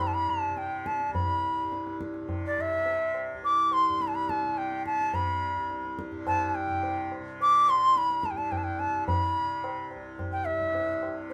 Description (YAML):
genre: indian classical, Hindustani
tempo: 106 BPM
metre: 7/4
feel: straight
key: C raga yaman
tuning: A4 = 436 Hz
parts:
  - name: bright reedy bansuri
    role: melody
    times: 0.0-11.3 s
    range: C5 to D6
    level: -28 LUFS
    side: equal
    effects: none
  - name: tanpura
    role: drone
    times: 0.0-11.3 s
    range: C2 to C3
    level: -39 LUFS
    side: equal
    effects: none
  - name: tabla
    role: percussion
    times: 0.3-11.3 s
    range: none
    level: -39 LUFS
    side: equal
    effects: none
room: moderate studio reverb, RT60 0.6 s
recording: none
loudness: -28 LUFS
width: mono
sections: 0.0-11.3 A section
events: speeding up 0.0-11.3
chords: none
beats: 0.00 0.57 | 1.15 1.72 2.30 2.87 3.44 4.01 4.58 | 5.14 5.71 6.27 6.84 7.40 7.96 8.52 | 9.08 9.63 10.19 10.74 11.29